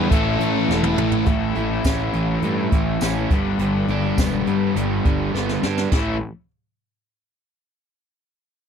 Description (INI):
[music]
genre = classic rock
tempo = 103 BPM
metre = 4/4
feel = straight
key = A mixolydian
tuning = A4 = 440 Hz
[part]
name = tonewheel organ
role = sustained chords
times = 0.0-1.3 s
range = B3 to E5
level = -32 LUFS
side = right 2 dB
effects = slow rotary speaker, overdrive
[part]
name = distorted electric guitar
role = riff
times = 0.0-6.2 s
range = G2 to B4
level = -24 LUFS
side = left 14 dB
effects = distortion
[part]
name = overdriven electric guitar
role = riff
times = 0.0-6.2 s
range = G2 to E4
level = -24 LUFS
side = right 13 dB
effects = none
[part]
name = thick fuzz guitar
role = riff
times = 0.0-1.3 s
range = A2 to E4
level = -25 LUFS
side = equal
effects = distortion
[part]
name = fuzz picked electric bass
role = bass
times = 0.0-6.2 s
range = E1 to G2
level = -24 LUFS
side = equal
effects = overdrive
[part]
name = jazz brush drum kit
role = drums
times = 0.1-6.1 s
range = crash cymbal, hi-hat, kick drum, snare drum, tambourine, toms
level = -22 LUFS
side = equal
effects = none
[sound]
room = little or no reverb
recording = dry, close 1970s-style studio recording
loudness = -18 LUFS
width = side -7 dB against mid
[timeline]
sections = 0.0-1.3 A section; 1.3-5.9 B section; 5.9-8.2 C section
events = drum fill 0.7-1.3, 5.3-5.9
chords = 0.1 A; 3.3 G; 5.9 A5